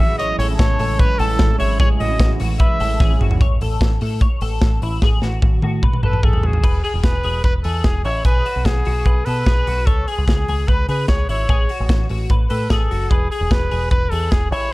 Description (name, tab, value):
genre	jangly indie pop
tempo	148 BPM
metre	4/4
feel	straight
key	unclear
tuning	A4 = 441 Hz
part	clear trumpet	melody	0.0-3.2, 6.0-14.7 s	G#4 to E5	-23 LUFS	equal	none
part	picked steel-string acoustic guitar	accompaniment	0.0-3.4 s	A2 to E4	-26 LUFS	right 6 dB	none
part	hollow soft pad	sustained chords	0.0-3.4 s	C#3 to E4	-33 LUFS	left 1 dB	none
part	twelve-string electric guitar	arpeggios	0.0-14.7 s	E4 to C#5	-28 LUFS	left 4 dB	analog chorus
part	deep dub picked electric bass	bass	0.0-14.7 s	E1 to C#3	-21 LUFS	equal	none
part	modern studio drum kit	drums	0.0-14.6 s	crash cymbal, hi-hat, kick drum, snare drum, toms	-18 LUFS	equal	none
room	studio reverb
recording	none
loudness	-15 LUFS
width	side -20 dB against mid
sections	0.0-3.4 A section; 3.4-6.6 B section; 6.6-14.7 C section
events	drum fill 3.0-3.4, 5.0-6.6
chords	0.0 Amaj7; 6.6 E; 8.3 B5; 9.9 C#m; 11.5 A; 13.1 E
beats	| 0.19 0.59 0.99 1.40 | 1.80 2.20 2.60 3.00 | 3.41 3.81 4.21 4.62 | 5.02 5.42 5.83 6.23 | 6.63 7.04 7.44 7.85 | 8.25 8.66 9.06 9.46 | 9.87 10.27 10.68 11.08 | 11.49 11.89 12.30 12.70 | 13.11 13.51 13.92 14.32 | 14.73